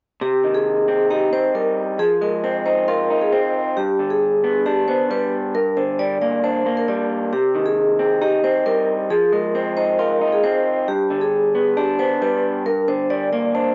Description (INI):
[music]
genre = hip hop, trap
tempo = 135 BPM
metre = 4/4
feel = half-time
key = C minor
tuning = A4 = 440 Hz
[part]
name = vibraphone with medium hard mallets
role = melody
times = 0.2-13.7 s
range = G4 to D5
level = -21 LUFS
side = equal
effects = cassette tape, analog delay
[part]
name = electric guitar through a small old amp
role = accompaniment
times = 0.2-13.7 s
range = G2 to F4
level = -24 LUFS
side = equal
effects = cassette tape
[sound]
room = moderate studio ambience, RT60 0.5 s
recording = home recording on cassette, nothing above 7.7 kHz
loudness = -19 LUFS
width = mono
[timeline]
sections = 0.2-13.7 A section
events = none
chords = 0.2 Cm; 2.0 Fm7; 3.8 G; 5.5 Gm; 7.3 Cm; 9.1 Fm7; 10.9 G; 12.7 Gm